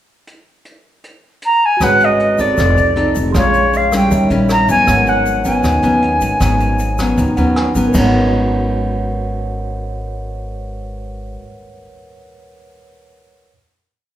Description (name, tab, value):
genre	bossa nova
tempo	156 BPM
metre	4/4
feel	straight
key	G# minor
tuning	A4 = 440 Hz
part	jazz brush drum kit	drums	0.3-8.0 s	crash cymbal, hi-hat, kick drum, rim click	-24 LUFS	equal	none
part	concert flute	melody	1.5-7.5 s	C#5 to A#5	-14 LUFS	equal	none
part	mellow tine electric piano	accompaniment	1.8-13.5 s	Eb4 to B#5	-24 LUFS	right 2 dB	medium stereo tremolo
part	nylon-string guitar	accompaniment	1.8-11.5 s	G#2 to B4	-18 LUFS	left 1 dB	none
part	upright bass	bass	1.8-11.4 s	F1 to D#2	-20 LUFS	equal	none
part	egg shaker	percussion	1.8-8.0 s	none	-34 LUFS	left 4 dB	none
room	wet recital hall reverb, RT60 1.8 s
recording	recorded in a church or concert hall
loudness	-12 LUFS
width	side -12 dB against mid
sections	0.3-1.8 pickup bar; 1.8-7.9 A section; 7.9-11.0 final chord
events	tine electric piano fill 7.2-7.9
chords	0.3 N.C.; 1.8 G#m7; 2.6 F7; 3.3 A#m7; 4.1 D#7b9; 4.9 G#m11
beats	| 0.27 0.65 1.04 1.42 | 1.81 2.19 2.57 2.96 | 3.34 3.72 4.11 4.49 | 4.87 5.26 5.64 6.02 | 6.41 6.79 7.17 7.56 | 7.94 8.33 8.71 9.09 | 9.48 9.86 10.25 10.63